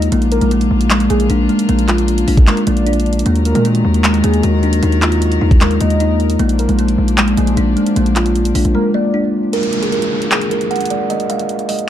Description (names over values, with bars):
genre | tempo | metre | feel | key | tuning
hip hop, trap | 153 BPM | 4/4 | half-time | unclear | A4 = 440 Hz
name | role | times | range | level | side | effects
kalimba | melody | 0.0-11.9 s | Ab3 to Gb5 | -15 LUFS | equal | low-pass filter, digital delay
warm velvety synth lead | second line | 0.0-9.5 s | Ab4 to Eb5 | -23 LUFS | equal | chorus, tremolo, digital delay
warm chamber string section | sustained chords | 0.0-9.5 s | Eb3 to Bb4 | -26 LUFS | left 3 dB | none
distorted 808-style bass | bass | 0.0-8.7 s | Bb1 to Bb2 | -16 LUFS | equal | distortion
trap drum kit | drums | 0.0-11.9 s | handclaps, hi-hat, kick drum | -17 LUFS | equal | none
downlifter | sound effects | 0.0-0.1, 9.5-11.9 s | none | -25 LUFS | equal | none
room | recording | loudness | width
little or no reverb | dark, warm production | -12 LUFS | side -11 dB against mid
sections
0.0-9.5 A section; 9.5-11.9 B section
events
silent gap 8.7-9.5; break 9.5-11.9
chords
0.1 Bb; 3.3 Ebm; 6.4 Bb; 9.5 N.C.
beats
| 0.12 0.51 0.90 1.30 | 1.69 2.08 2.47 2.87 | 3.26 3.65 4.04 4.43 | 4.83 5.22 5.61 6.00 | 6.39 6.79 7.18 7.57 | 7.96 8.36 8.75 9.14 | 9.53 9.92 10.32 10.71 | 11.10 11.49 11.88